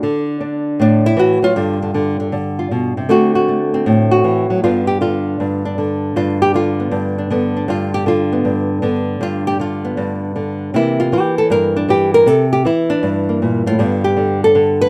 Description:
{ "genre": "solo jazz", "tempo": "157 BPM", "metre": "4/4", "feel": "swing 66% on 8ths", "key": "G mixolydian", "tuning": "A4 = 441 Hz", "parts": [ { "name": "nylon-string guitar", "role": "solo", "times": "0.0-14.9 s", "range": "G2 to B4", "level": "-16 LUFS", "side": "equal", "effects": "none" } ], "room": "moderate studio reverb, RT60 0.6 s", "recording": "none", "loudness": "-16 LUFS", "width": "mono", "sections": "0.0-4.6 A section; 4.6-14.9 A section", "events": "nylon-string guitar solo 0.0-4.6, 4.6-14.9", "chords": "0.0 D; 1.6 G7; 3.1 D7; 4.6 G7; 10.7 C7; 13.8 G", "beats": "| 0.01 0.40 0.78 1.17 | 1.55 1.93 2.32 2.70 | 3.09 3.47 3.85 4.24 | 4.62 5.00 5.39 5.77 | 6.15 6.54 6.92 7.30 | 7.68 8.06 8.45 8.83 | 9.21 9.59 9.97 10.35 | 10.73 11.12 11.50 11.88 | 12.26 12.64 13.02 13.40 | 13.78 14.16 14.54" }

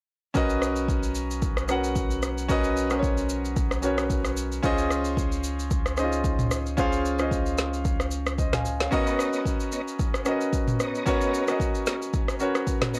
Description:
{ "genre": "amapiano", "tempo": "112 BPM", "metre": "4/4", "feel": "swing 55% on 16ths", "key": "B major", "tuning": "A4 = 441 Hz", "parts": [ { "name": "warm concert grand piano", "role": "accompaniment", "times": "0.3-13.0 s", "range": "C#4 to G#5", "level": "-29 LUFS", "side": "equal", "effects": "none" }, { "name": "afro-pop drum kit", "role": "drums", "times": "0.3-13.0 s", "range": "kick drum, rim click, shaker, snare drum, toms", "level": "-30 LUFS", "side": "equal", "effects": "overdrive" }, { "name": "warm sub bass", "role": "bass", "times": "0.4-8.9 s", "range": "B1 to C#2", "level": "-34 LUFS", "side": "equal", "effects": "none" }, { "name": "tonewheel organ", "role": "stabs", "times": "8.9-13.0 s", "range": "B3 to A#5", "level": "-35 LUFS", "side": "equal", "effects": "chorus vibrato, fast rotary speaker, tape echo" } ], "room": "little or no reverb", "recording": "dry, gritty hardware recording", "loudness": "-26 LUFS", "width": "mono", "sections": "0.4-13.0 A section", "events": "none", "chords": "0.4 Bmaj9; 4.6 C#maj9; 8.9 Bmaj9", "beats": "| 0.35 0.89 1.42 1.96 | 2.49 3.03 3.57 4.10 | 4.64 5.17 5.71 6.24 | 6.78 7.32 7.85 8.39 | 8.92 9.46 9.99 10.53 | 11.07 11.60 12.14 12.67" }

